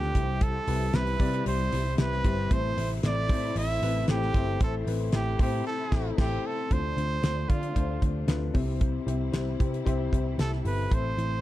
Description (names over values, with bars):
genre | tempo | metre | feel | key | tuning
piano-driven pop | 114 BPM | 4/4 | straight | unclear | A4 = 439 Hz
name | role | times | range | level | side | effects
clear trumpet | melody | 0.0-11.4 s | F4 to E5 | -32 LUFS | right 3 dB | none
dark upright piano | accompaniment | 0.0-11.4 s | A2 to D5 | -32 LUFS | left 5 dB | none
warm studio string section | sustained chords | 0.0-11.4 s | C3 to E4 | -41 LUFS | equal | none
vintage muted picked electric bass | bass | 0.0-11.4 s | G1 to D3 | -30 LUFS | equal | none
damped 70s drum kit | drums | 0.0-11.3 s | crash cymbal, hi-hat, kick drum, snare drum | -28 LUFS | equal | none
room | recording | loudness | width
small room ambience | dark, warm production | -25 LUFS | side -15 dB against mid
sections
0.0-6.7 A section; 6.7-11.4 B section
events
band accent 5.7-6.7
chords
0.2 C; 2.5 Am; 6.7 Dm7; 8.6 C